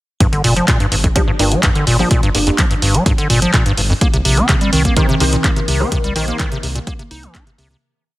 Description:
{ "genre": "acid house", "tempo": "126 BPM", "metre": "4/4", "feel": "straight", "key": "G minor", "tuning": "A4 = 445 Hz", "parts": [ { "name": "acid bass, square", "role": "riff", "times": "0.2-7.8 s", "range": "F2 to Eb4", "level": "-17 LUFS", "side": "equal", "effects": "tube saturation, sidechain pumping" }, { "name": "electronic kick drum", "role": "drums", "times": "0.2-7.4 s", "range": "none", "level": "-16 LUFS", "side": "equal", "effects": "studio reverb" }, { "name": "punchy analog drum machine", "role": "drums", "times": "0.2-7.7 s", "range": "handclaps, hi-hat", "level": "-19 LUFS", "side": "equal", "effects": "studio reverb" }, { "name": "round analog bass", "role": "bass", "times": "0.3-7.7 s", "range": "F1 to C2", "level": "-20 LUFS", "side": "equal", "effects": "tube saturation, sidechain pumping" }, { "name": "filtered dub chord stab", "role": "stabs", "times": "1.2-6.4 s", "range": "Bb3 to C5", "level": "-23 LUFS", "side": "right 1 dB", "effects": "ensemble chorus, analog delay" }, { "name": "warbly tape-like pad", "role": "sustained chords", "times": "4.4-7.8 s", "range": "Eb3 to Bb4", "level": "-24 LUFS", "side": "equal", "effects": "chorus, built-in reverb, sidechain pumping" } ], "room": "light reverb", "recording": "heavily compressed radio sound, multiband compression", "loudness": "-12 LUFS", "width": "side -17 dB against mid", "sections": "0.2-7.8 groove", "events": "fade-out 5.3-7.8", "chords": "0.2 Gm7; 4.0 Cm7" }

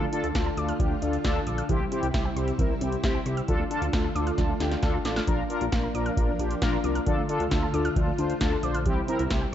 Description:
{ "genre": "synth-pop", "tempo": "134 BPM", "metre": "4/4", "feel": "straight", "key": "D minor", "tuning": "A4 = 441 Hz", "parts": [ { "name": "mellow synth brass", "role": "accompaniment", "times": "0.0-9.5 s", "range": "C4 to C5", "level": "-29 LUFS", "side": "left 2 dB", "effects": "chorus" }, { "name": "ensemble organ-string", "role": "sustained chords", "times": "0.0-9.5 s", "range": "C3 to F4", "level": "-33 LUFS", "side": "equal", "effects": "ensemble chorus" }, { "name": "soft round pluck", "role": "arpeggios", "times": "0.0-9.5 s", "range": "E3 to F6", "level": "-35 LUFS", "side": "right 2 dB", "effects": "chorus, phaser, analog delay" }, { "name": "chorused synth bass", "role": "bass", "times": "0.0-9.5 s", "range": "A1 to D2", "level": "-31 LUFS", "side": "equal", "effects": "none" }, { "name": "electro analog drum machine", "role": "drums", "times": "0.1-9.4 s", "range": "hi-hat, kick drum, snare drum", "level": "-28 LUFS", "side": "equal", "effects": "none" } ], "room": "light reverb", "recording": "dark, warm production, nothing above 7.9 kHz", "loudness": "-24 LUFS", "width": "side -10 dB against mid", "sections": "0.0-9.5 A section", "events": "drum fill 4.4-5.3", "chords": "0.0 Dm; 1.7 C; 3.5 Dm; 5.3 Bb; 7.1 Dm; 8.9 C" }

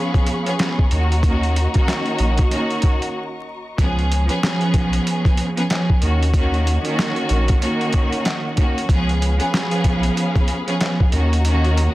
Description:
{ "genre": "hip hop, boom-bap hip-hop", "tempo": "94 BPM", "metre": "4/4", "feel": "swing 58% on 16ths", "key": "Eb minor", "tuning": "A4 = 440 Hz", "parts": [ { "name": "clear studio string section", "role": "accompaniment", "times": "0.0-11.9 s", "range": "Eb3 to Ab4", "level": "-21 LUFS", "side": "equal", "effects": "cassette tape, high-pass filter, low-pass filter" }, { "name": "dark studio string section", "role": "sustained chords", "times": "0.0-3.8, 8.9-11.9 s", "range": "Gb4 to Db6", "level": "-29 LUFS", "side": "left 1 dB", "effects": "high-pass filter, low-pass filter" }, { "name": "boom bap sampler-style drum kit", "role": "drums", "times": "0.1-11.9 s", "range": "handclaps, hi-hat, kick drum, snare drum", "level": "-19 LUFS", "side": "equal", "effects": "none" }, { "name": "soft dub sub bass", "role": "bass", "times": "0.9-11.9 s", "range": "Bb1 to Eb2", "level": "-18 LUFS", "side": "equal", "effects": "none" } ], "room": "little or no reverb", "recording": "dense, heavily limited modern master, vinyl crackle", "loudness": "-16 LUFS", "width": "side -17 dB against mid", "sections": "0.0-3.8 A section; 3.8-11.9 A section", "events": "break 3.1-3.8; kick muted 11.4-11.9", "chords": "0.0 Db7; 0.9 Ebm7; 3.8 Db7; 6.0 Ebm7; 8.9 Db7; 11.1 Ebm7" }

